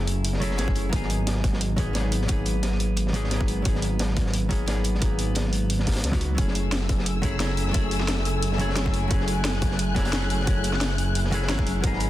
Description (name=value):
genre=liquid drum and bass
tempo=176 BPM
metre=4/4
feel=swing 53% on 16ths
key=F# dorian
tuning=A4 = 440 Hz
part: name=hollow-body jazz guitar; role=accompaniment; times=0.0-12.1 s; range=F#3 to G#4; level=-28 LUFS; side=right 1 dB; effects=ping-pong delay
part: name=dark detuned saw bass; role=bass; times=0.0-12.1 s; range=F#1 to C#2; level=-26 LUFS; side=equal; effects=none
part: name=crunchy breakbeat drum kit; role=drums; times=0.0-12.1 s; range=hi-hat, snare drum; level=-33 LUFS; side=equal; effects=high-pass filter on hats, high-pass filter on snare, high-pass filter on room
part: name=drum and bass drum kit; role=drums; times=0.1-12.1 s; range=hi-hat, snare drum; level=-31 LUFS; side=equal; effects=none
part: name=electronic kick drum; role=drums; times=0.7-11.9 s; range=none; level=-25 LUFS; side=equal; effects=none
part: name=dark symphonic string section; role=sustained chords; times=6.4-12.1 s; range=A3 to F#6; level=-32 LUFS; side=left 3 dB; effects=none
room=light reverb, small room reverb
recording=dense, heavily limited modern master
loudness=-22 LUFS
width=side -14 dB against mid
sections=0.0-12.1 A section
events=none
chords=0.0 F#m9; 0.9 G#m9; 6.4 F#m9